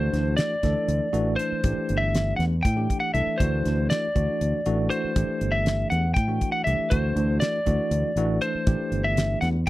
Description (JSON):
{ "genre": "electric jazz fusion", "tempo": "239 BPM (eighths)", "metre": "7/8", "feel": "straight", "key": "A dorian", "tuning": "A4 = 440 Hz", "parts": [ { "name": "lightly driven lead guitar", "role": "melody", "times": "0.0-9.7 s", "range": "C5 to G5", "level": "-27 LUFS", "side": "left 1 dB", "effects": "none" }, { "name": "bell-like tine electric piano", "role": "accompaniment", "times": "0.0-9.6 s", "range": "E3 to A4", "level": "-29 LUFS", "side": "right 1 dB", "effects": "medium stereo tremolo" }, { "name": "fingered electric bass", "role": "bass", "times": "0.0-9.6 s", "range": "G1 to A2", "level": "-25 LUFS", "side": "equal", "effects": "none" }, { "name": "damped 70s drum kit", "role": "drums", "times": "0.1-9.7 s", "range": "hi-hat, kick drum, snare drum", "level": "-25 LUFS", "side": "equal", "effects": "none" } ], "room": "light reverb", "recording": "dry, close 1970s-style studio recording", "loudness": "-22 LUFS", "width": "side -16 dB against mid", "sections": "0.0-9.7 A section", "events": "none", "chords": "0.0 D9; 1.6 Am7; 3.4 D9; 5.2 Am7; 6.9 D9; 8.7 Am7" }